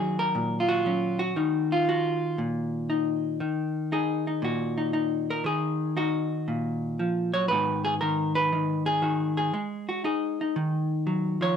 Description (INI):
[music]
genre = solo jazz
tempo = 118 BPM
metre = 4/4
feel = swing 69% on 8ths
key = Eb minor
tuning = A4 = 438 Hz
[part]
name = vintage hollow-body jazz guitar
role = solo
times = 0.0-11.6 s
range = Ab2 to Db5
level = -24 LUFS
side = equal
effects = none
[sound]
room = moderate studio reverb, RT60 0.7 s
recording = none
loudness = -24 LUFS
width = side -7 dB against mid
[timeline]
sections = 0.0-11.6 A section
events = none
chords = 0.0 Ebm7; 7.5 Abm7